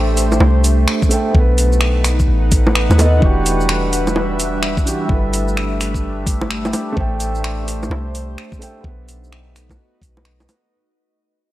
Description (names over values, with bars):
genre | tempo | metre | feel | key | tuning
future garage | 128 BPM | 4/4 | swing 63% on 16ths | unclear | A4 = 440 Hz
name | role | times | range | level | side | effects
felt-muted upright piano | accompaniment | 0.0-10.7 s | E3 to G5 | -23 LUFS | right 1 dB | sidechain pumping, tape echo
warbly tape-like pad | sustained chords | 0.0-10.7 s | G3 to F#5 | -23 LUFS | equal | chorus, built-in reverb, phaser, sidechain pumping
soft 808-style bass | bass | 0.0-10.5 s | E1 to D#2 | -17 LUFS | equal | sidechain pumping
garage drum kit | drums | 0.2-10.6 s | bongos, finger snaps, hi-hat, shaker | -21 LUFS | right 1 dB | overdrive
electronic kick drum | drums | 1.0-10.1 s | none | -17 LUFS | equal | overdrive
room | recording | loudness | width
light reverb | vinyl crackle | -14 LUFS | side -15 dB against mid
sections
0.0-10.7 A section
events
fade-out 3.2-10.7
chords
0.0 D9sus4/A; 1.3 B7; 3.2 Em9; 5.1 G69; 7.0 D9sus4/A; 8.8 B7